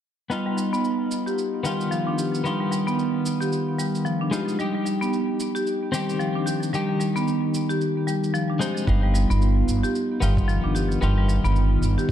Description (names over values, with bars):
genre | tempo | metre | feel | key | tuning
organic downtempo | 112 BPM | 4/4 | swing 59% on 16ths | unclear | A4 = 438 Hz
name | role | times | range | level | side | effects
twelve-string electric guitar | accompaniment | 0.3-12.1 s | Eb3 to C5 | -26 LUFS | left 3 dB | tremolo, sidechain pumping, low-pass filter, ping-pong delay
marimba with hard mallets | arpeggios | 0.3-12.0 s | F3 to G4 | -25 LUFS | right 1 dB | low-pass filter, ping-pong delay
cabasa | drums | 0.3-12.1 s | none | -38 LUFS | right 3 dB | none
upright bass | bass | 8.9-12.0 s | G1 | -20 LUFS | equal | none
electronic kick drum | drums | 8.9-12.1 s | none | -24 LUFS | equal | none
room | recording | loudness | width
light reverb, digital ambience | dark, warm production | -21 LUFS | side -10 dB against mid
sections
0.3-12.1 A section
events
none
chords
0.3 G7b13; 4.6 F7sus2 (rootless); 8.9 G7b13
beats
| 0.30 0.84 1.38 1.91 | 2.45 2.98 3.52 4.05 | 4.59 5.12 5.66 6.20 | 6.73 7.27 7.80 8.34 | 8.88 9.41 9.95 10.48 | 11.02 11.55 12.09